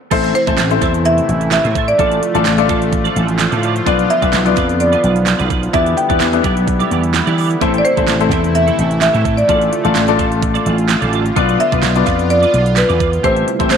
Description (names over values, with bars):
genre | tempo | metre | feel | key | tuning
dance-pop | 128 BPM | 4/4 | straight | A minor | A4 = 440 Hz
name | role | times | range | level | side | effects
clear concert grand piano | accompaniment | 0.1-13.8 s | A3 to E5 | -18 LUFS | left 12 dB | sidechain pumping
sweeping resonant pad | sustained chords | 0.1-13.8 s | C3 to F4 | -22 LUFS | right 2 dB | chorus, sidechain pumping
twelve-string electric guitar | riff | 0.1-13.7 s | C4 to E5 | -23 LUFS | right 12 dB | ensemble chorus
vintage slap bass | bass | 0.1-13.8 s | A1 to E3 | -17 LUFS | equal | sidechain pumping
pop drum kit | drums | 0.1-13.8 s | crash cymbal, handclaps, hi-hat, kick drum, snare drum | -20 LUFS | right 4 dB | none
marimba with medium hard mallets | melody | 0.3-13.8 s | B4 to G5 | -17 LUFS | right 1 dB | slapback echo
group handclap | percussion | 0.6-13.8 s | none | -32 LUFS | left 12 dB | none
room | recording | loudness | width
moderate echo chamber reverb, RT60 1.9 s, digital ambience | 1960s-style stereo with parts hard left and right | -12 LUFS | side -7 dB against mid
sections
0.1-13.8 A section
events
none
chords
0.1 Am; 2.0 Dm/A; 3.9 Bdim; 5.7 Em7; 7.6 Am; 9.5 Dm/A; 11.4 Bdim; 13.2 Am7